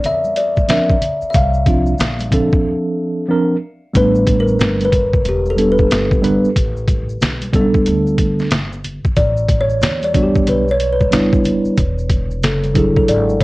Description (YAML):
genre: hip hop, jazz-hop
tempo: 92 BPM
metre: 4/4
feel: swing 63% on 16ths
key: unclear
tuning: A4 = 440 Hz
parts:
  - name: kalimba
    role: melody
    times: 0.0-13.4 s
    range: G4 to F5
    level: -18 LUFS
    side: left 1 dB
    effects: none
  - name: upright bass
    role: bass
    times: 0.0-13.4 s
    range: E1 to F2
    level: -21 LUFS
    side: equal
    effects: tube saturation
  - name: trip hop sampler-style drum kit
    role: drums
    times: 0.0-13.4 s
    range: hi-hat, kick drum, snare drum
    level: -17 LUFS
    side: equal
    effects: none
  - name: congas and maracas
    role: percussion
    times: 0.0-13.4 s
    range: none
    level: -30 LUFS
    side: equal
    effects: none
  - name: mellow tine electric piano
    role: accompaniment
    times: 0.7-13.4 s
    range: F3 to B4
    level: -16 LUFS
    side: right 1 dB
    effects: medium stereo tremolo
room: moderate studio reverb, RT60 0.5 s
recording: worn, warbling old tape, cassette tape, warbly pitch drift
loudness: -13 LUFS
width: side -20 dB against mid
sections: 0.0-4.0 A section; 4.0-13.4 B section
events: break 2.6-4.0; kalimba solo 4.0-13.4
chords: 0.0 C9sus4; 4.0 A9sus4; 11.8 E9sus4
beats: 0.04 0.69 | 1.34 2.00 2.65 3.30 | 3.95 4.60 5.26 5.91 | 6.56 7.21 7.86 8.52 | 9.17 9.82 10.47 11.12 | 11.78 12.43 13.08